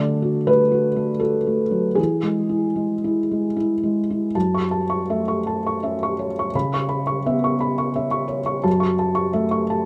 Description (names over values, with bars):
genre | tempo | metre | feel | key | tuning
neoclassical minimalist piano | 75-87 BPM | 3/4 | rubato | F# minor | A4 = 440 Hz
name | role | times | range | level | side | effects
felt-muted upright piano | solo | 0.0-9.9 s | F#2 to C#6 | -21 LUFS | equal | none
room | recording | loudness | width
light reverb | none | -21 LUFS | mono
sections
0.0-4.3 A section; 4.3-9.9 B section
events
none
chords
0.0 D; 2.0 E; 4.3 F#m7; 6.5 C#m7; 8.7 F#m7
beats
0.47 1.21 | 1.98 2.78 3.57 | 4.35 5.09 5.83 | 6.54 7.26 7.96 | 8.66 9.36